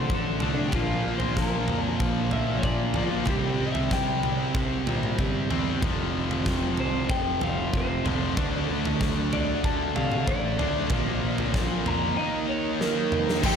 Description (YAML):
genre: quiet-loud alternative rock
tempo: 94 BPM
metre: 4/4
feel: straight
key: unclear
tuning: A4 = 440 Hz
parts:
  - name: electric guitar through a small old amp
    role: melody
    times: 0.0-13.6 s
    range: D4 to Bb5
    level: -31 LUFS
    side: left 1 dB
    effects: slapback echo, digital delay
  - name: fingerpicked steel-string acoustic guitar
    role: arpeggios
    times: 0.0-3.3 s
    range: Bb2 to F4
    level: -35 LUFS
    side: left 5 dB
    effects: slapback echo, digital delay
  - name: thick fuzz guitar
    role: riff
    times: 0.0-13.6 s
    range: F2 to Eb4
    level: -30 LUFS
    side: right 8 dB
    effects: distortion, slapback echo
  - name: tight distorted guitar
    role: riff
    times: 0.0-13.6 s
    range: F2 to Eb4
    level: -31 LUFS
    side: left 9 dB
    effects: distortion
  - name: fuzz picked electric bass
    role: bass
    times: 0.0-13.6 s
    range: F1 to C3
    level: -31 LUFS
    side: equal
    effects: overdrive
  - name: huge arena drum kit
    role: drums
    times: 0.1-13.6 s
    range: crash cymbal, kick drum, snare drum, toms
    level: -28 LUFS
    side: right 1 dB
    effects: none
  - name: high-gain distorted guitar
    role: riff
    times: 13.4-13.6 s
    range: Ab2 to Eb4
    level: -28 LUFS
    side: equal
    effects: distortion
room: moderate concert hall reverb, RT60 2.0 s, small room ambience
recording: big arena sound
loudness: -23 LUFS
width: side -7 dB against mid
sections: 0.0-13.4 A section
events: clean electric guitar solo 0.0-13.4; drum fill 12.8-13.4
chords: 0.0 Dm; 0.7 Bb; 3.3 C5; 5.8 F5; 8.4 D5; 10.9 Bb5; 12.2 Eb5